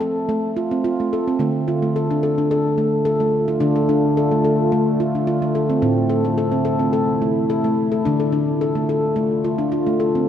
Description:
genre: world meditative, meditative tuned percussion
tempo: 108 BPM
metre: 4/4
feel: straight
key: D minor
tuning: A4 = 441 Hz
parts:
  - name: handpan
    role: arpeggios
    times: 0.0-10.3 s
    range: A2 to A4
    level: -18 LUFS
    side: equal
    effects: none
  - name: deep dark ambient pad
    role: sustained chords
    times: 2.5-10.3 s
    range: C3 to F4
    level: -22 LUFS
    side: left 1 dB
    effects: chorus, built-in reverb
room: wet lush hall reverb, RT60 2.7 s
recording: dark, warm production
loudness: -17 LUFS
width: side -9 dB against mid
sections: 0.0-10.3 A section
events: none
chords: 0.0 F; 1.4 Dm; 5.8 Am; 8.1 Dm

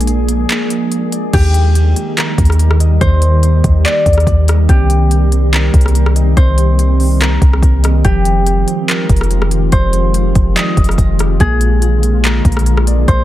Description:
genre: hip hop, atmospheric cloud-rap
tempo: 143 BPM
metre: 4/4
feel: half-time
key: unclear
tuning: A4 = 444 Hz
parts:
  - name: glassy FM pad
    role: sustained chords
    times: 0.0-13.2 s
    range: D3 to Ab4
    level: -19 LUFS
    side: left 1 dB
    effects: ensemble chorus, built-in reverb, sidechain pumping
  - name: muted felt-like synth keys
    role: arpeggios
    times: 0.0-13.2 s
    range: Eb3 to Eb5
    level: -22 LUFS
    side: right 6 dB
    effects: chorus, low-pass filter, digital delay
  - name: soft 808-style bass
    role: bass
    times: 0.0-13.2 s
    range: F1 to Eb2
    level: -11 LUFS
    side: equal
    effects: none
  - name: smooth R&B drum kit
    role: drums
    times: 0.0-13.2 s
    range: crash cymbal, handclaps, hi-hat, kick drum, rim click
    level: -14 LUFS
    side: equal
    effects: overdrive
  - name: concert harp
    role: melody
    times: 1.3-13.2 s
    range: G4 to Eb5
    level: -20 LUFS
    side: left 1 dB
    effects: low-pass filter, digital delay
room: little or no reverb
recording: dense, heavily limited modern master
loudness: -10 LUFS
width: side -14 dB against mid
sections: 0.0-1.3 A section; 1.3-13.2 B section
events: break 0.5-1.3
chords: 0.0 Bb7; 1.3 Ebmaj7; 4.7 Cm7; 8.0 Fm9; 11.4 Bb7

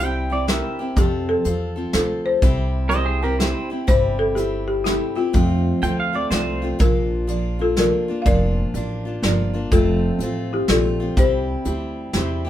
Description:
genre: honky-tonk and classic country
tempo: 124 BPM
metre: 3/4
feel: swing 64% on 8ths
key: F major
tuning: A4 = 440 Hz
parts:
  - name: pedal steel guitar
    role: second line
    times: 0.0-6.7 s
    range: G4 to G5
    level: -24 LUFS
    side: right 2 dB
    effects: none
  - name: dark upright piano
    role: accompaniment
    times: 0.0-12.5 s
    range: E4 to D5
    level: -31 LUFS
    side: right 2 dB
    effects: none
  - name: picked steel-string acoustic guitar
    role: accompaniment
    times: 0.0-12.5 s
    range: F2 to A4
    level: -25 LUFS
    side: equal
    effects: none
  - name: upright bass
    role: bass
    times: 0.0-12.5 s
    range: F1 to F2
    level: -24 LUFS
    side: equal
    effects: none
  - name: soft brush drum kit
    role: drums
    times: 0.0-12.3 s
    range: hi-hat, kick drum, snare drum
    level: -20 LUFS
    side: equal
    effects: none
  - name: folk marimba with medium hard mallets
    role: melody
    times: 1.0-11.9 s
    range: E4 to F5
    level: -22 LUFS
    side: left 3 dB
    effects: none
room: wet small room ambience, RT60 0.5 s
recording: band playing live in one room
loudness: -18 LUFS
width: side -12 dB against mid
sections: 0.0-6.8 A section; 6.8-12.5 B section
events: none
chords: 0.0 C; 1.0 F; 2.4 C; 5.3 F; 6.8 Bb; 9.7 F; 11.2 C

